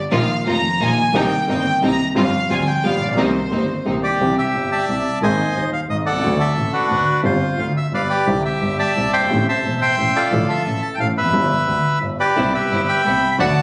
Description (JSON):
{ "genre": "tango", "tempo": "176 BPM", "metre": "3/4", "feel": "rubato", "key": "C minor, C major from 4.2 s", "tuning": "A4 = 440 Hz", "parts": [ { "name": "warm chamber violin section", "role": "second line", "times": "0.0-3.9 s", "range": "C5 to Bb5", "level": "-24 LUFS", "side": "equal", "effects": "none" }, { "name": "warm grand piano", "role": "accompaniment", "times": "0.1-13.5 s", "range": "Eb1 to Ab4", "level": "-24 LUFS", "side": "equal", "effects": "none" }, { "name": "rich studio string section", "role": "stabs", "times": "0.1-4.0, 12.4-13.5 s", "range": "G3 to F#4", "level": "-26 LUFS", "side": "equal", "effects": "none" }, { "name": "rich double bass", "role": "bass", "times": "0.1-13.5 s", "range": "E1 to Eb2", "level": "-28 LUFS", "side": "equal", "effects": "none" }, { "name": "bandoneon", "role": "melody", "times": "4.0-13.6 s", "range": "D4 to C6", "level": "-21 LUFS", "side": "equal", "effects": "none" } ], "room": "moderate large studio reverb, RT60 1.2 s", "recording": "recorded on a phone in the room, club reverb", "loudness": "-19 LUFS", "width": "mono", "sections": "0.0-4.2 A section; 4.2-13.6 B section", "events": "violin section solo 0.0-4.2", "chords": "0.1 Bbsus4; 1.1 Cm7; 2.2 G7sus4; 2.8 G7; 3.2 Cm7; 4.2 Cadd9; 5.2 Abadd9; 6.2 D; 7.2 G7sus4; 7.9 G7; 8.3 Cadd9; 9.3 Am7; 10.3 Dm/A; 11.3 G6; 12.4 Cmaj7", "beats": "| 0.12 0.47 0.81 | 1.15 1.49 1.82 | 2.16 2.50 2.83 | 3.17 3.51 3.86 | 4.20 4.54 4.88 | 5.22 5.56 5.90 | 6.23 6.57 6.91 | 7.25 7.59 7.93 | 8.28 8.62 8.97 | 9.31 9.64 9.98 | 10.32 10.66 11.00 | 11.34 11.68 12.02 | 12.37 12.71 13.05 | 13.39" }